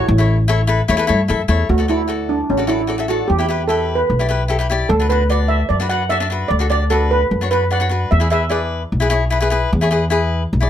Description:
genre	calypso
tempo	149 BPM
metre	4/4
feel	straight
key	D major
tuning	A4 = 438 Hz
part	steel pan	melody	0.0-8.7 s	C#4 to F#5	-19 LUFS	right 3 dB	slapback echo
part	cavaquinho	accompaniment	0.0-10.7 s	D4 to E5	-20 LUFS	left 4 dB	none
part	upright bass	bass	0.1-10.7 s	A1 to G2	-18 LUFS	equal	none
room	moderate small room reverb, RT60 0.6 s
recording	none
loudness	-15 LUFS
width	side -10 dB against mid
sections	0.0-1.7 A section; 1.7-10.7 B section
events	steel pan solo 1.7-10.7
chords	0.1 A; 1.7 D; 3.3 Em7; 4.9 Bm/D; 8.1 E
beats	| 0.08 0.48 0.88 1.28 | 1.69 2.09 2.49 2.89 | 3.29 3.69 4.10 4.50 | 4.90 5.30 5.71 6.11 | 6.51 6.91 7.31 7.71 | 8.12 8.52 8.92 9.32 | 9.72 10.12 10.53

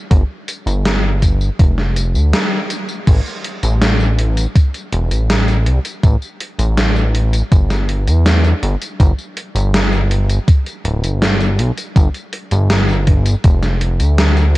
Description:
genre	vaporwave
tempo	81 BPM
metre	4/4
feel	straight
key	unclear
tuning	A4 = 440 Hz
part	chorused synth bass	bass	0.1-14.6 s	D1 to E2	-14 LUFS	equal	none
part	electronic kick drum	drums	0.1-13.6 s	none	-11 LUFS	equal	none
part	gated 80s digital drum machine	drums	0.1-14.6 s	crash cymbal, hi-hat, snare drum, tambourine	-19 LUFS	equal	gated reverb, gated reverb snare
room	little or no reverb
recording	cassette tape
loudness	-13 LUFS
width	side -18 dB against mid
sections	0.0-3.1 A section; 3.1-14.6 B section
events	break 2.3-3.1; band accent 2.3-2.7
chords	none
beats	| 0.11 0.85 1.59 2.33 | 3.07 3.81 4.55 5.29 | 6.03 6.77 7.51 8.26 | 9.00 9.74 10.48 11.22 | 11.96 12.70 13.44 14.18

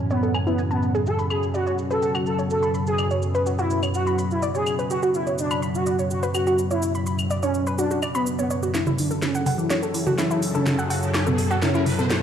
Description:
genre	melodic techno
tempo	125 BPM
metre	4/4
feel	straight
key	F# minor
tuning	A4 = 441 Hz
part	sweeping resonant pad	sustained chords	0.0-12.2 s	A2 to A4	-28 LUFS	equal	chorus
part	analog drone	drone	0.0-12.2 s	F#2 to C#3	-28 LUFS	equal	chorus
part	expressive portamento lead	melody	0.1-12.1 s	B3 to A4	-26 LUFS	equal	ensemble chorus, tape echo
part	warbly dusty pluck	arpeggios	0.1-12.0 s	E4 to B5	-27 LUFS	right 1 dB	chorus, tape echo
part	house drum kit	drums	0.1-12.2 s	claves, hi-hat, shaker, snare drum, toms	-28 LUFS	left 1 dB	none
part	glassy wavetable pluck	second line	8.7-12.1 s	B2 to E3	-28 LUFS	right 1 dB	chorus, tape echo
part	riser	sound effects	9.6-12.2 s	none	-33 LUFS	equal	none
part	swelling detuned saw bass	bass	8.9-12.1 s	none	barely audible	none	none
room	light reverb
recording	played on a big sound system in a bare room, large studio reverb, low-pass filter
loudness	-20 LUFS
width	side -9 dB against mid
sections	0.0-8.7 A section; 8.7-12.2 B section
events	build-up 8.7-12.2; drum fill 8.7-12.2; filter sweep on analog synth lead 8.7-12.2; riser 9.6-12.2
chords	0.0 Amaj7; 1.1 Bsus2; 8.7 F#m7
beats	0.10 0.58 | 1.06 1.54 2.02 2.50 | 2.98 3.46 3.94 4.42 | 4.91 5.38 5.87 6.34 | 6.83 7.30 7.79 8.27 | 8.74 9.22 9.71 10.19 | 10.66 11.14 11.62 12.11

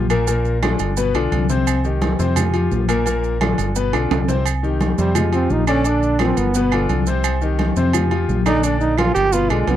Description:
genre	latin, salsa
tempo	172 BPM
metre	4/4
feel	straight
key	C minor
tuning	A4 = 439 Hz
part	bright concert grand piano	accompaniment	0.0-9.8 s	Bb2 to D5	-21 LUFS	left 6 dB	none
part	fingered electric bass	bass	0.0-9.8 s	G1 to F2	-20 LUFS	right 1 dB	none
part	agogo bells and timbales	percussion	0.1-9.8 s	none	-26 LUFS	right 7 dB	none
part	claves	percussion	0.1-9.7 s	none	-30 LUFS	right 24 dB	none
part	maracas	percussion	0.1-9.8 s	none	-32 LUFS	right 28 dB	none
part	congas	percussion	0.3-9.8 s	none	-25 LUFS	left 1 dB	none
part	bright trombone	melody	5.0-9.8 s	G3 to G4	-19 LUFS	right 3 dB	none
room	little or no reverb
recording	dry, close 1970s-style studio recording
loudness	-16 LUFS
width	side -11 dB against mid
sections	0.0-4.5 A section; 4.5-9.8 B section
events	drum fill 3.9-4.5; trombone solo 4.5-9.8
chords	0.3 Bb; 1.0 G7; 1.7 Cm; 2.4 Fsus2; 3.1 Bb; 3.8 G7; 4.5 Cm; 5.2 Fsus2; 5.8 Bb; 6.5 G7; 7.2 Cm; 7.9 Fsus2; 8.6 Bb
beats	| 0.28 0.62 0.97 1.32 | 1.67 2.02 2.37 2.71 | 3.06 3.41 3.76 4.11 | 4.46 4.80 5.15 5.50 | 5.85 6.20 6.55 6.89 | 7.24 7.59 7.94 8.29 | 8.63 8.98 9.33 9.68

